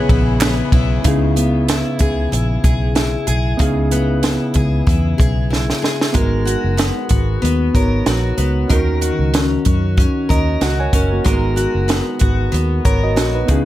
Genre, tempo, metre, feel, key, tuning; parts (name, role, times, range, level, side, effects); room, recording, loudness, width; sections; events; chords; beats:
indie pop, bedroom pop; 94 BPM; 4/4; swing 55% on 16ths; G# minor; A4 = 440 Hz
picked steel-string acoustic guitar; accompaniment; 0.0-13.7 s; C#3 to A#4; -20 LUFS; left 3 dB; wide subtle chorus, vibrato effect
reed electric piano; accompaniment; 0.0-13.7 s; A#3 to G#5; -23 LUFS; right 5 dB; cassette tape
hollow soft pad; sustained chords; 0.0-1.0 s; G#4 to B5; -29 LUFS; left 2 dB; chorus
vintage muted fingered electric bass; bass; 0.0-13.7 s; F#1 to F#2; -18 LUFS; equal
compact cocktail drum kit; drums; 0.1-13.7 s; hi-hat, kick drum, ride cymbal, snare drum; -17 LUFS; equal
group handclap; percussion; 0.4-0.6 s; -22 LUFS; right 6 dB
light reverb; -14 LUFS; side -14 dB against mid
0.0-1.0 A section; 1.0-6.2 B section; 6.2-13.7 C section
drum fill 5.5-6.2; reed electric piano fill 10.0-11.3
0.0 C#m7; 6.2 G#m9; 8.7 D#m7; 11.3 G#m9
0.41 | 1.05 1.68 2.32 2.96 | 3.60 4.24 4.87 5.51 | 6.15 6.79 7.43 8.06 | 8.70 9.34 9.98 10.62 | 11.26 11.89 12.53 13.17